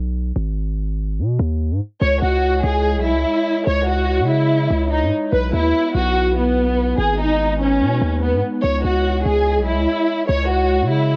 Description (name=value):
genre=hip hop, drill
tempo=145 BPM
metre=4/4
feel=half-time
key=C# minor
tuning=A4 = 440 Hz
part: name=long sustained 808-style bass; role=bass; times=0.0-11.2 s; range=G#1 to C#3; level=-22 LUFS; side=equal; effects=none
part: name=dark studio violin section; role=melody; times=2.0-11.2 s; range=B3 to C#5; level=-20 LUFS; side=equal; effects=low-pass filter, tape echo
part: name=glass harmonica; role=sustained chords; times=2.0-11.2 s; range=G#3 to D#5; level=-29 LUFS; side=equal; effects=none
room=light reverb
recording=none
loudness=-19 LUFS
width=mono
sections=0.0-2.0 A section; 2.0-11.2 B section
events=break 0.0-2.0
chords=0.4 G#5; 2.0 C#madd9; 5.3 Bsus4; 7.0 G#m; 8.6 C#madd9